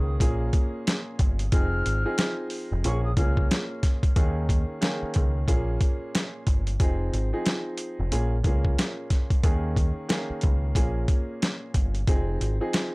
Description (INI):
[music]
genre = hip hop, boom-bap hip-hop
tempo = 91 BPM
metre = 4/4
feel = swing 61% on 16ths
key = Bb dorian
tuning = A4 = 440 Hz
[part]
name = warm upright piano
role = accompaniment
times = 0.0-12.9 s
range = Bb2 to Ab4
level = -31 LUFS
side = equal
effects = cassette tape, high-pass filter, low-pass filter
[part]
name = deep dub picked electric bass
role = bass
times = 0.0-12.6 s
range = F1 to Eb2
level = -26 LUFS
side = equal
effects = none
[part]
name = boom bap sampler-style drum kit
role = drums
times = 0.2-12.9 s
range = hi-hat, kick drum, snare drum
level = -23 LUFS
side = equal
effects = none
[part]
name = breathy jazz flute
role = melody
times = 1.5-3.5 s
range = Db6 to F6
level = -36 LUFS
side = left 1 dB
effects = high-pass filter, low-pass filter, tape echo
[sound]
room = little or no reverb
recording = dry, gritty hardware recording, transformer saturation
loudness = -23 LUFS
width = side -26 dB against mid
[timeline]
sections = 0.0-4.2 A section; 4.2-12.9 B section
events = none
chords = 0.2 Bbm7; 1.5 Fm7; 2.8 Bbm7; 4.2 Eb7sus4; 5.5 Bbm7; 6.8 Fm7; 8.1 Bbm7; 9.4 Eb7sus4; 10.8 Bbm7; 12.1 Fm7